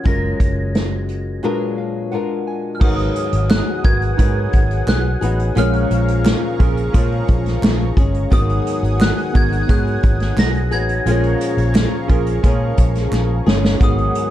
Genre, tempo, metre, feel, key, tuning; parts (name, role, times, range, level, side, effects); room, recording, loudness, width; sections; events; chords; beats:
indie pop, bedroom pop; 87 BPM; 4/4; straight; A4 = 440 Hz
glockenspiel with hard plastic mallets; melody; 0.0-14.3 s; Eb6 to Bb6; -27 LUFS; equal; ensemble chorus, analog delay
flamenco guitar; accompaniment; 0.0-14.3 s; Ab2 to Bb4; -23 LUFS; left 4 dB; wide subtle chorus, vibrato effect
warm analog keys; accompaniment; 0.0-14.3 s; Bb2 to Ab5; -27 LUFS; right 7 dB; chorus
vintage muted fingered electric bass; bass; 0.1-14.1 s; Gb1 to Bb2; -19 LUFS; equal
unplugged drum kit; drums; 0.1-14.3 s; crash cymbal, hi-hat, kick drum, snare drum; -17 LUFS; equal
lush unison pad; sustained chords; 2.8-14.3 s; Ab4 to Eb6; -29 LUFS; left 2 dB; chorus
group handclap; percussion; 3.5-13.3 s; -36 LUFS; right 3 dB
light reverb; dark, warm production; -15 LUFS; side -12 dB against mid
0.0-2.8 A section; 2.8-14.3 B section
break 1.4-2.8; synth keys fill 1.4-2.8; drum fill 13.1-13.8
0.1 Gbmaj9; 1.4 Bb7b9b13; 2.8 Abm7; 5.6 Bbm7; 8.3 Abm7; 11.1 Bbm7
| 0.06 0.74 1.43 2.12 | 2.81 3.50 4.19 4.88 | 5.56 6.25 6.94 7.63 | 8.31 9.00 9.69 10.38 | 11.06 11.75 12.44 13.13 | 13.81